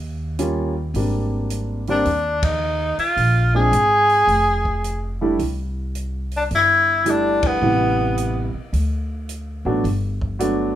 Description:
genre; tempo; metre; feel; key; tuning
jazz, small-group swing and bop; 108 BPM; 4/4; swing 66% on 8ths; unclear; A4 = 440 Hz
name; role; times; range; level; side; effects
upright bass; bass; 0.0-10.8 s; F1 to Eb2; -23 LUFS; equal; none
warm grand piano; accompaniment; 0.4-10.7 s; C3 to F4; -22 LUFS; right 2 dB; none
open jazz drum kit; drums; 0.4-10.6 s; hi-hat, kick drum, ride cymbal; -30 LUFS; equal; none
clear tenor saxophone; melody; 1.9-8.6 s; B3 to Ab4; -17 LUFS; left 1 dB; none
room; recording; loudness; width
light reverb; minimal, uncompressed stereo recording; -17 LUFS; side -12 dB against mid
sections
0.0-10.8 A section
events
band accent 2.3, 7.3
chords
0.0 Eb9; 0.9 Abmaj9#11; 3.2 Bb7; 5.4 C69; 7.6 Am9; 8.7 D; 9.8 Gmaj9

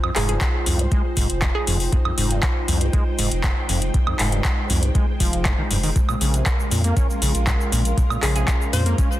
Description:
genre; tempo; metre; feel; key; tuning
acid house; 119 BPM; 4/4; straight; F minor; A4 = 440 Hz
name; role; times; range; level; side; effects
string machine, full ensemble; sustained chords; 0.0-9.2 s; Ab3 to G5; -31 LUFS; equal; ensemble chorus, sidechain pumping
overdriven acid bass; riff; 0.0-9.1 s; Eb2 to Db4; -26 LUFS; equal; tube saturation, wide subtle chorus, sidechain pumping, tape echo
electro analog drum machine; drums; 0.0-9.2 s; handclaps, hi-hat, shaker, woodblock; -25 LUFS; equal; none
warbly tape-like pad; texture; 0.0-9.2 s; F4 to C6; -32 LUFS; right 2 dB; chorus, built-in reverb, sidechain pumping
hollow square pluck; melody; 0.2-2.3, 8.2-8.9 s; Ab4 to C5; -30 LUFS; equal; chorus, tape echo
saturated sub bass; bass; 0.2-8.9 s; F1 to F2; -22 LUFS; equal; tube saturation, sidechain pumping
electronic kick drum; drums; 0.4-9.1 s; none; -21 LUFS; equal; overdrive
room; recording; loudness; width
digital ambience; dense, heavily limited modern master; -18 LUFS; side -14 dB against mid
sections
0.0-9.2 A section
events
none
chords
0.0 Fm7; 6.0 Bbm7

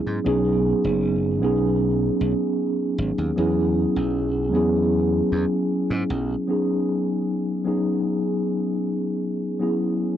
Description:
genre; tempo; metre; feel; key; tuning
vaporwave; 77 BPM; 4/4; straight; B major; A4 = 439 Hz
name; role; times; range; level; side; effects
mellow tine electric piano; accompaniment; 0.0-10.2 s; F#3 to G#4; -21 LUFS; equal; fast stereo tremolo, lush chorus, analog delay
slap bass; bass; 0.1-6.3 s; F#1 to G#2; -26 LUFS; equal; none
room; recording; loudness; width
wet lush hall reverb, RT60 2.7 s; dark, warm production, cassette tape; -20 LUFS; side -10 dB against mid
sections
0.0-6.5 A section; 6.5-10.2 B section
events
none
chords
0.3 B69; 3.4 E69; 6.5 B69; 9.6 E69

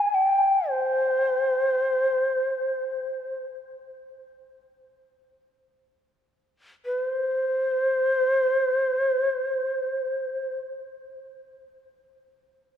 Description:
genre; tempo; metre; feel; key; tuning
japanese traditional, Japanese chamber music; free time; none; none; unclear; A4 = 440 Hz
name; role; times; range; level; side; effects
breathy mellow shakuhachi; solo; 0.0-3.4, 6.9-10.5 s; C5 to Ab5; -22 LUFS; equal; none
room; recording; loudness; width
wet cathedral reverb, RT60 4.4 s; minimal, uncompressed stereo recording; -22 LUFS; side -9 dB against mid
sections
0.0-6.9 A section; 6.9-11.6 B section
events
slowing down 2.4-6.9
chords
none

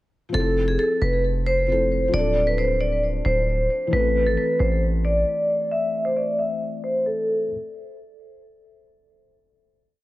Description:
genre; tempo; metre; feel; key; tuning
hip hop, trap; 134 BPM; 4/4; half-time; A minor; A4 = 441 Hz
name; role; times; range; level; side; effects
vibraphone with hard mallets; melody; 0.3-7.5 s; G#4 to E5; -22 LUFS; equal; ping-pong delay
felt-muted upright piano; accompaniment; 0.3-7.5 s; E3 to A4; -29 LUFS; left 4 dB; none
hard-hitting 808-style bass; bass; 0.3-5.2 s; D1 to A1; -23 LUFS; equal; none
room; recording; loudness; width
light reverb, small room ambience; low-pass filter; -20 LUFS; side -16 dB against mid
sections
0.3-7.5 breakdown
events
filter sweep 0.3-7.5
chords
0.3 Fmaj7; 2.1 Dm7; 3.9 Am

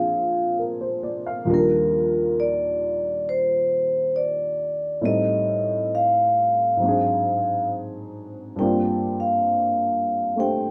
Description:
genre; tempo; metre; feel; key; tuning
jazz ballad; 67 BPM; 4/4; swing 69% on 8ths; unclear; A4 = 440 Hz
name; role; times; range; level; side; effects
vibraphone with medium mallets; melody; 0.0-10.7 s; Bb4 to G5; -23 LUFS; equal; none
warm upright piano; accompaniment; 0.0-10.7 s; Eb2 to F5; -28 LUFS; equal; none
room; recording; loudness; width
moderate club reverb, RT60 0.5 s; dark, warm production; -22 LUFS; mono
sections
0.0-10.7 A section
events
none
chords
0.0 Bb7; 1.5 Ebmaj9; 5.0 Am7b5; 6.8 Ab7#11; 8.6 Gm11

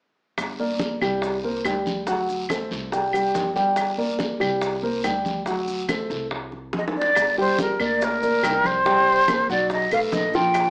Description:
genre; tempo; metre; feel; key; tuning
Afro-Cuban jazz; 142 BPM; 4/4; straight; G minor; A4 = 442 Hz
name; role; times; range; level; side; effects
upright bass; bass; 0.4-10.7 s; G1 to D2; -39 LUFS; equal; none
bongos; percussion; 0.4-10.7 s; none; -34 LUFS; equal; none
claves; percussion; 0.4-10.7 s; none; -33 LUFS; equal; none
congas; percussion; 0.4-10.7 s; none; -35 LUFS; equal; none
guiro; percussion; 0.4-10.7 s; none; -39 LUFS; equal; none
maracas; percussion; 0.4-10.7 s; none; -47 LUFS; equal; none
dark concert grand piano; accompaniment; 0.6-10.7 s; F3 to G5; -26 LUFS; equal; none
breathy jazz flute; melody; 6.8-10.7 s; Bb4 to G5; -22 LUFS; equal; none
room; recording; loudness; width
moderate studio reverb, RT60 0.7 s; small speaker sound; -23 LUFS; mono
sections
0.4-7.2 A section; 7.2-10.7 B section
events
drum fill 6.7-7.2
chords
0.4 Gm; 1.2 C5; 2.1 D7; 2.9 C5; 3.8 Gm; 4.6 C5; 5.5 D7; 6.3 Csus2; 7.2 Gmadd11; 8.9 C5; 9.7 B5

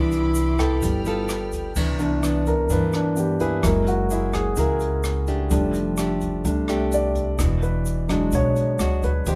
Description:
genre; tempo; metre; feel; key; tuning
bossa nova; 128 BPM; 4/4; straight; C major; A4 = 439 Hz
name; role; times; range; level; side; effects
mellow wooden-headed alto flute; melody; 0.0-1.3 s; E4; -27 LUFS; equal; none
nylon-string guitar; accompaniment; 0.0-9.4 s; G2 to A4; -29 LUFS; equal; none
warm chamber string section; sustained chords; 0.0-1.8 s; A4 to F6; -40 LUFS; equal; none
upright bass; bass; 0.0-9.4 s; E1 to G2; -28 LUFS; equal; none
jazz brush drum kit; drums; 0.1-9.4 s; crash cymbal, hi-hat, kick drum, rim click; -30 LUFS; equal; none
egg shaker; percussion; 0.1-9.4 s; none; -41 LUFS; equal; none
warm grand piano; accompaniment; 0.6-9.4 s; E3 to G5; -26 LUFS; equal; none
room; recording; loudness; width
light reverb; band playing live in one room; -22 LUFS; mono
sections
0.0-1.8 A section; 1.8-9.4 A section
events
alto flute solo 0.0-1.8; grand piano solo 1.8-9.4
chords
0.0 Cmaj9; 0.8 G9; 1.8 Cmaj9; 3.6 F#9; 5.5 F69; 7.4 E9

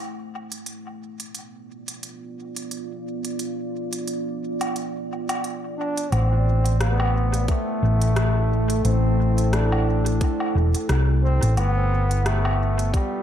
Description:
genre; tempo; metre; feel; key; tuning
ambient dub; 88 BPM; 4/4; swing 57% on 16ths; A minor; A4 = 439 Hz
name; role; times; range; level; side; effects
deep dark ambient pad; sustained chords; 0.0-13.2 s; A3 to G5; -29 LUFS; equal; chorus, built-in reverb
organic electronic drum kit; drums; 0.5-13.1 s; hi-hat, rim click, woodblock; -31 LUFS; equal; dub echo
warm trombone; melody; 5.8-13.2 s; G3 to D4; -28 LUFS; equal; dub echo
hollow-body short-scale fingered electric bass; bass; 6.1-12.9 s; E1 to C2; -20 LUFS; equal; tube saturation
electronic kick drum; drums; 7.5-13.1 s; none; -23 LUFS; equal; none
room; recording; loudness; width
light reverb, digital ambience; none; -20 LUFS; side -10 dB against mid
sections
0.0-6.1 A section; 6.1-13.2 B section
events
filter sweep on ambient pad 0.0-6.1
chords
0.0 Am7; 0.7 G7; 6.1 Am7; 11.6 G7

